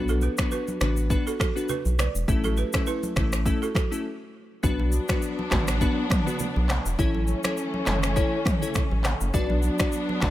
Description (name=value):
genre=afrobeats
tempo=102 BPM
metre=4/4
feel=swing 55% on 16ths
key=B minor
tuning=A4 = 440 Hz
part: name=glassy digital keys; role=accompaniment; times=0.0-10.3 s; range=A3 to D5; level=-29 LUFS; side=left 2 dB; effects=chorus
part: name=round analog bass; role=bass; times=0.0-10.3 s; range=E1 to B1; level=-25 LUFS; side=equal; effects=none
part: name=balafon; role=riff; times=0.1-3.9 s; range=E4 to D5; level=-32 LUFS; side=right 8 dB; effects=digital delay
part: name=deep house drum kit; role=drums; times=0.1-10.3 s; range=finger snaps, handclaps, kick drum, rim click, shaker, toms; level=-26 LUFS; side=equal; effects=none
part: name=congas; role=percussion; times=0.1-10.3 s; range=none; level=-35 LUFS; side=right 1 dB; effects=none
part: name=dark studio string section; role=sustained chords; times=4.6-10.3 s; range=E3 to D4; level=-31 LUFS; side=equal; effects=none
room=digital ambience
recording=none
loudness=-22 LUFS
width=side -14 dB against mid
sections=0.0-4.6 A section; 4.6-10.3 B section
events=break 4.0-4.6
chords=0.0 Bm; 2.3 A; 4.6 Bm; 7.0 A; 9.3 Bm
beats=0.52 1.10 1.69 | 2.28 2.87 3.46 4.05 | 4.63 5.22 5.81 6.40 | 6.99 7.58 8.16 8.75 | 9.34 9.93